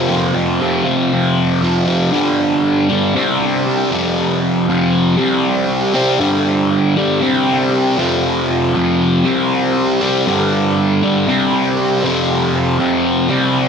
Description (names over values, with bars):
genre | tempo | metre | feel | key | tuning
rock | 118 BPM | 4/4 | straight | unclear | A4 = 440 Hz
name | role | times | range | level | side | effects
fuzz guitar | solo | 0.0-13.7 s | F2 to C4 | -13 LUFS | equal | distortion, phaser, analog delay
room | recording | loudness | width
moderate echo chamber reverb, RT60 1.7 s, digital ambience | echo-heavy mix | -13 LUFS | side -6 dB against mid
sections
0.0-2.1 A section; 2.1-13.7 B section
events
none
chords
0.0 F5; 2.1 G5; 3.1 C5; 3.9 F5; 5.2 C5; 6.2 G5; 7.2 C5; 8.0 F5; 9.3 C5; 10.3 G5; 11.3 C5; 12.0 F5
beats
| 0.10 0.60 1.11 1.62 | 2.13 2.64 3.15 3.66 | 4.17 4.67 5.18 5.69 | 6.20 6.71 7.22 7.73 | 8.24 8.75 9.26 9.77 | 10.27 10.78 11.29 11.79 | 12.30 12.80 13.31